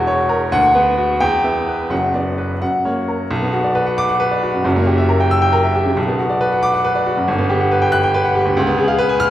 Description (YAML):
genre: classical, virtuoso piano study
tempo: 85-94 BPM (dotted quarters)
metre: 6/8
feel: rubato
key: B minor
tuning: A4 = 441 Hz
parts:
  - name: clear baby grand piano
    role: solo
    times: 0.0-9.3 s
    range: E1 to F#6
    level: -14 LUFS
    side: equal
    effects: none
room: wet recital hall reverb, RT60 1.4 s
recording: heard from further back in the room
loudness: -14 LUFS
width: side -13 dB against mid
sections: 0.0-3.3 A section; 3.3-9.3 B section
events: none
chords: 0.0 F#7/E; 0.5 Bm/D; 1.2 Em; 1.9 Bm/F#; 2.6 F#; 3.3 Bm; 4.6 F#7b9; 6.0 Bm; 7.3 Gmaj7; 8.6 C#7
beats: | 0.52 1.21 | 1.91 2.61 | 3.30 3.98 | 4.65 5.31 | 5.97 6.63 | 7.28 7.92 | 8.57 9.21